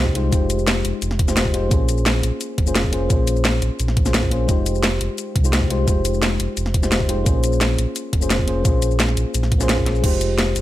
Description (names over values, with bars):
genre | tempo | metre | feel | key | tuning
liquid drum and bass | 173 BPM | 4/4 | straight | F minor | A4 = 441 Hz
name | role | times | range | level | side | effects
mellow FM electric piano | accompaniment | 0.0-10.6 s | Ab3 to C5 | -23 LUFS | left 2 dB | chorus, cassette tape, ping-pong delay
sub bass with octave | bass | 0.0-10.6 s | F1 to C2 | -21 LUFS | equal | tube saturation
electronic kick drum | drums | 0.1-10.1 s | none | -20 LUFS | equal | none
drum and bass drum kit | drums | 0.2-10.6 s | crash cymbal, hi-hat, shaker, snare drum | -22 LUFS | equal | overdrive
room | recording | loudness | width
light reverb | none | -17 LUFS | side -14 dB against mid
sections
0.0-10.0 A section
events
drop 0.0-10.0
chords
0.0 Fm9; 1.7 Bbm9; 4.5 Fm9; 7.3 Bbm9; 10.0 Fm9